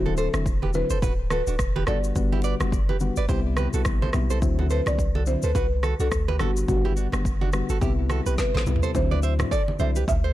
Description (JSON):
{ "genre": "afrobeats", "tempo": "106 BPM", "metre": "4/4", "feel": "swing 58% on 16ths", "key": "D mixolydian", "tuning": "A4 = 440 Hz", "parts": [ { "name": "buzzing marimba with soft mallets", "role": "melody", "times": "0.0-10.2 s", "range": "F#4 to E5", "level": "-29 LUFS", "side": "equal", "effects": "ping-pong delay" }, { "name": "soft electric-piano-like synth keys", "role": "accompaniment", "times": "0.0-10.0 s", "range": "C3 to F#4", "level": "-29 LUFS", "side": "left 4 dB", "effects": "chorus" }, { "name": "punchy sub bass", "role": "bass", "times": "0.0-10.3 s", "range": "D1 to D2", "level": "-25 LUFS", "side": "equal", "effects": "none" }, { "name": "nylon-string guitar", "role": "riff", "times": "0.1-10.3 s", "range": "D4 to E5", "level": "-32 LUFS", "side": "right 7 dB", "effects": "ping-pong delay" }, { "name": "congas", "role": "percussion", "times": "0.1-10.2 s", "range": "none", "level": "-34 LUFS", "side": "right 2 dB", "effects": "none" }, { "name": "afro-pop drum kit", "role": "drums", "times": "0.2-10.2 s", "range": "kick drum, rim click, shaker, snare drum, toms", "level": "-27 LUFS", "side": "equal", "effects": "vintage 12-bit sampler grit" } ], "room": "small room ambience", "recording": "none", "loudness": "-21 LUFS", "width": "side -14 dB against mid", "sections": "0.0-8.9 A section; 8.9-10.3 B section", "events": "drum fill 8.4-8.9", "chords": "0.0 D9; 1.9 Gmaj7; 3.3 Cmaj7; 4.4 D9; 6.4 Gmaj7; 7.8 Cmaj7; 8.9 D9" }